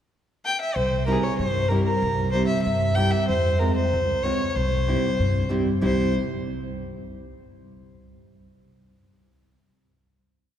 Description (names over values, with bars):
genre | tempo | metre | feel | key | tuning
klezmer | 95 BPM | 2/4 | straight | C phrygian dominant | A4 = 436 Hz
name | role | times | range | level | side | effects
warm violin | melody | 0.5-6.1 s | Ab4 to G5 | -25 LUFS | left 1 dB | none
upright bass | bass | 0.8-6.1 s | C2 to G2 | -25 LUFS | equal | none
nylon-string guitar | accompaniment | 1.1-6.1 s | G3 to F4 | -26 LUFS | right 1 dB | none
room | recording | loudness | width
wet church reverb, RT60 3.5 s | recorded in a church or concert hall | -21 LUFS | side -10 dB against mid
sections
0.0-0.8 pickup bar; 0.8-5.8 A section; 5.8-7.1 final chord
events
none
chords
0.0 N.C.; 0.8 C; 3.3 Fm; 4.6 C